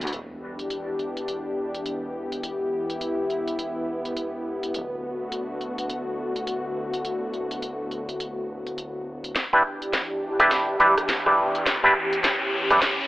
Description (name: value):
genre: glitch hop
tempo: 104 BPM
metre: 4/4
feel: swing 61% on 16ths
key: E dorian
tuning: A4 = 440 Hz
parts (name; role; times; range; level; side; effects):
- warm analog pad; sustained chords; 0.0-13.1 s; E2 to G4; -28 LUFS; left 1 dB; chorus, sidechain pumping
- drum and bass drum kit; drums; 0.0-13.0 s; hi-hat, rim click, snare drum; -28 LUFS; equal; high-pass filter on hats, high-pass filter on snare, high-pass filter on room
- gritty driven synth bass; bass; 0.1-9.3 s; D1 to E1; -41 LUFS; equal; tube saturation
- sub drop and riser; sound effects; 0.1-2.4, 10.1-13.1 s; none; -29 LUFS; left 1 dB; none
- electronic kick drum; drums; 9.4-13.0 s; none; -28 LUFS; equal; high-pass filter on kick, high-pass filter on room
- auto-wah clav; stabs; 9.5-12.8 s; D4 to B4; -20 LUFS; equal; sidechain pumping, dub echo
room: moderate plate reverb, RT60 1.4 s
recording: telephone sound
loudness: -23 LUFS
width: side -17 dB against mid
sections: 0.1-9.4 A section; 9.4-13.1 B section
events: impact 0.1-2.4; build-up 9.4-13.1; drum fill 9.4-13.1; riser 10.1-13.1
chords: 0.1 Em7; 4.7 D6; 9.4 Em7